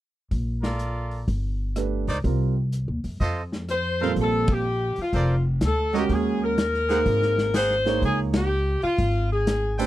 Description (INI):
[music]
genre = jazz, big band swing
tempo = 124 BPM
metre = 4/4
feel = swing 66% on 8ths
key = unclear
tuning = A4 = 438 Hz
[part]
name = upright bass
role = bass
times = 0.3-9.9 s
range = F1 to Gb2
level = -25 LUFS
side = equal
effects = none
[part]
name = vintage drum kit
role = drums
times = 0.3-9.9 s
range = hi-hat, kick drum, ride cymbal, rim click, snare drum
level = -28 LUFS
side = left 1 dB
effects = none
[part]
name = brilliant trumpet section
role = stabs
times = 0.6-9.9 s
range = Eb4 to G5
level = -29 LUFS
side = right 2 dB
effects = none
[part]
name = warm grand piano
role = accompaniment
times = 1.8-9.9 s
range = Bb2 to Db5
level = -27 LUFS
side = right 10 dB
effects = none
[part]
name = bright saxophone section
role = melody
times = 3.7-9.8 s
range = F4 to C5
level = -24 LUFS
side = left 2 dB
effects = none
[sound]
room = little or no reverb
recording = none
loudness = -22 LUFS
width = side -14 dB against mid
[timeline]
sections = 0.3-4.2 A section; 4.2-9.9 B section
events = band accent 4.4, 8.3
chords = 0.3 Bbmaj7; 1.3 G; 2.2 Cm7; 3.2 F7; 4.2 Bbmaj9; 6.1 Ebm7; 7.1 Ab9; 8.0 Db69